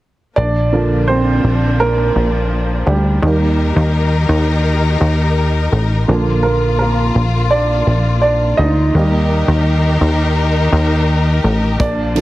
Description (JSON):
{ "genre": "piano-driven pop", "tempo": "84 BPM", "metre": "4/4", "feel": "straight", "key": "Bb major", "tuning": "A4 = 441 Hz", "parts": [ { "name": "warm upright piano", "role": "accompaniment", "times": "0.4-12.2 s", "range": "D3 to Eb5", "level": "-18 LUFS", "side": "right 2 dB", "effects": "none" }, { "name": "clear studio string section", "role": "sustained chords", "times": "0.4-12.2 s", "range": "Eb3 to Bb4", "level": "-21 LUFS", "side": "left 3 dB", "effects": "none" }, { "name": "plucky analog bass", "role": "bass", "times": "0.4-12.2 s", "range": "A1 to Eb2", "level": "-14 LUFS", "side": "equal", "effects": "none" }, { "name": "natural country drum kit", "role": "drums", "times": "11.8-12.2 s", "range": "hi-hat, kick drum", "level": "-20 LUFS", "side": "equal", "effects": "none" } ], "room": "light reverb, small room ambience", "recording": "heavily compressed radio sound", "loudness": "-12 LUFS", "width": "side -16 dB against mid", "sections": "0.4-12.2 A section", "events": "upright piano solo 0.4-12.2", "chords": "0.4 Bb; 3.2 Eb; 6.1 Bb; 8.9 Eb", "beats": "| 0.37 1.08 1.79 2.51 | 3.22 3.94 4.65 5.37 | 6.08 6.80 7.51 8.22 | 8.94 9.65 10.37 11.08 | 11.80" }